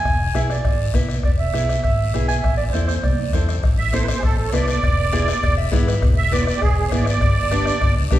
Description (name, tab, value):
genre	latin, cumbia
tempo	201 BPM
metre	4/4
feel	straight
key	A harmonic minor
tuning	A4 = 440 Hz
part	warm clarinet	second line	0.0-3.5 s	C5 to G#5	-24 LUFS	right 4 dB	none
part	fingered electric bass	bass	0.1-8.2 s	E1 to E2	-21 LUFS	equal	none
part	bombo	percussion	0.1-8.2 s	none	-22 LUFS	left 1 dB	none
part	congas	percussion	0.1-8.2 s	none	-30 LUFS	right 4 dB	none
part	guiro	percussion	0.1-8.2 s	none	-34 LUFS	left 7 dB	none
part	nylon-string guitar	accompaniment	0.3-8.2 s	B3 to E5	-28 LUFS	left 4 dB	none
part	musette accordion	melody	3.8-7.9 s	G4 to E5	-22 LUFS	right 4 dB	none
room	wet recital hall reverb, RT60 1.5 s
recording	recorded in a church or concert hall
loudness	-17 LUFS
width	side -14 dB against mid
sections	0.0-3.6 A section; 3.6-8.2 B section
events	clarinet solo 0.0-3.6; drum fill 2.9-3.6; accordion solo 3.6-8.2; nylon-string guitar fill 5.4-6.0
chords	0.0 E; 2.4 Am; 4.8 E7; 7.2 G